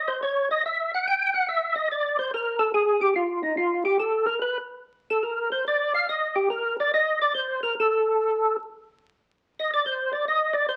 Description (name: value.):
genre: jazz.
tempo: 144 BPM.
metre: 4/4.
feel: swing 67% on 8ths.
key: unclear.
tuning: A4 = 440 Hz.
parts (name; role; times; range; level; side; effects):
percussive tonewheel organ; solo; 0.0-10.8 s; Eb4 to G5; -24 LUFS; equal; slow rotary speaker, chorus vibrato.
room: wet studio reverb, RT60 0.8 s.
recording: very old 78 rpm record, vinyl crackle.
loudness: -25 LUFS.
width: mono.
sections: 0.0-10.8 A section.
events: tonewheel organ solo 0.0-10.8.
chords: none.